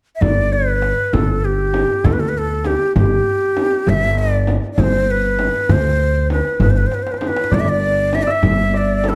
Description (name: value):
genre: Persian modal ensemble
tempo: 66 BPM (dotted quarters)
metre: 6/8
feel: straight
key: G dastgah mahur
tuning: A4 = 438 Hz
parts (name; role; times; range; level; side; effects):
- breathy bright ney; melody; 0.2-9.2 s; G4 to E5; -21 LUFS; equal; none
- upright bass; bass; 0.2-9.1 s; G1 to D2; -21 LUFS; equal; none
- frame drum; percussion; 0.2-9.2 s; none; -26 LUFS; equal; none
- tombak; percussion; 0.2-9.2 s; none; -25 LUFS; equal; none
- santur; second line; 7.5-9.2 s; A4 to E5; -26 LUFS; equal; none
room: moderate recital hall reverb, RT60 1.4 s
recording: dark, warm production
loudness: -17 LUFS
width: mono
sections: 0.2-9.2 A section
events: drum fill 6.9-7.5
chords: none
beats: | 0.22 1.14 | 2.05 2.96 | 3.87 4.79 | 5.70 6.61 | 7.53 8.44